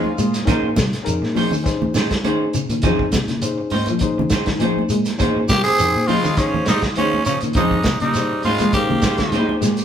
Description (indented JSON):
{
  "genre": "afrobeat",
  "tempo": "102 BPM",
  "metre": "4/4",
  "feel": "swing 53% on 16ths",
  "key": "Bb dorian",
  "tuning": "A4 = 439 Hz",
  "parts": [
    { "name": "raspy tenor saxophone", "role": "melody", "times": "0.0-0.2, 5.5-9.6 s", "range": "Db4 to Ab4", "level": "-21 LUFS", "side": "right 1 dB", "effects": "tape echo" },
    { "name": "bright alto saxophone", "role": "second line", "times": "0.0-0.2, 5.5-9.6 s", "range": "F3 to C4", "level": "-28 LUFS", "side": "right 1 dB", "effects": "none" },
    { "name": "barky reed electric piano", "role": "accompaniment", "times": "0.0-9.6 s", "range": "Db4 to Db5", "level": "-26 LUFS", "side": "left 4 dB", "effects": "overdrive" },
    { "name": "electric guitar at the edge of break-up", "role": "arpeggios", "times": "0.0-9.8 s", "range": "C3 to Ab3", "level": "-24 LUFS", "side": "left 3 dB", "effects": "none" },
    { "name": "semi-hollow electric guitar", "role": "stabs", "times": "0.0-9.8 s", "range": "Db4 to C5", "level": "-25 LUFS", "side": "right 4 dB", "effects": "none" },
    { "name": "fingered electric bass", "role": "bass", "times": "0.0-9.8 s", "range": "F2 to G3", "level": "-25 LUFS", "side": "equal", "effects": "none" },
    { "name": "congas", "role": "percussion", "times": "0.0-9.6 s", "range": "none", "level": "-26 LUFS", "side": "equal", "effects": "none" },
    { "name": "vintage drum kit", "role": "drums", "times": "0.2-9.8 s", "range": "hi-hat, kick drum, snare drum", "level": "-23 LUFS", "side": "equal", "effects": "none" },
    { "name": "shekere", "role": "percussion", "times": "0.2-9.8 s", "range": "none", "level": "-28 LUFS", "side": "right 2 dB", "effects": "none" }
  ],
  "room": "wet large studio reverb, RT60 1.2 s",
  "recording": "band playing live in one room",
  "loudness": "-16 LUFS",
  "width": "side -9 dB against mid",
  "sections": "0.0-9.8 A section",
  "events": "none",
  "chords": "0.0 Bbm11"
}